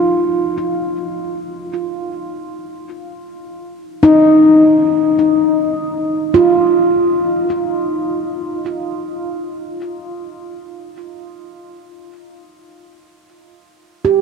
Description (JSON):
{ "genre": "ambient", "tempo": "free time", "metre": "none", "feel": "none", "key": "unclear", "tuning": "A4 = 440 Hz", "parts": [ { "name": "handpan", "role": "solo", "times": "0.0-7.9, 14.0-14.2 s", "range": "Eb4 to G4", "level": "-14 LUFS", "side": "equal", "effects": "ping-pong delay" } ], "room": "wet huge ambient reverb, RT60 8.7 s", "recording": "dark, warm production", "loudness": "-12 LUFS", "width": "side -5 dB against mid", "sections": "0.0-14.2 A section", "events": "none", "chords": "none" }